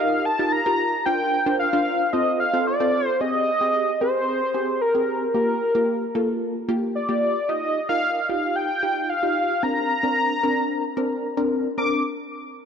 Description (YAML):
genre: pop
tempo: 112 BPM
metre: 4/4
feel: straight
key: Bb major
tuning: A4 = 440 Hz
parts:
  - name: octave-doubled lead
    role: melody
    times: 0.0-12.0 s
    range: Bb4 to D6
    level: -22 LUFS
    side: equal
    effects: chorus
  - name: funky polysynth comp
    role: accompaniment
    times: 0.0-12.0 s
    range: Bb3 to C5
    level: -24 LUFS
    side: equal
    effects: chorus
room: wet plate reverb, RT60 2.5 s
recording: dark, warm production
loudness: -20 LUFS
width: side -7 dB against mid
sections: 0.0-3.2 A section; 3.2-11.8 B section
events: none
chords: 0.0 Ebadd9; 1.1 Bbadd9; 2.1 F; 3.2 Abmaj7; 5.3 Gm7; 7.5 Ebadd9; 9.6 Bbadd9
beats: 0.53 | 1.06 1.60 2.13 2.67 | 3.20 3.74 4.28 4.81 | 5.35 5.88 6.42 6.95 | 7.49 8.03 8.56 9.10 | 9.63 10.17 10.70 11.24 | 11.78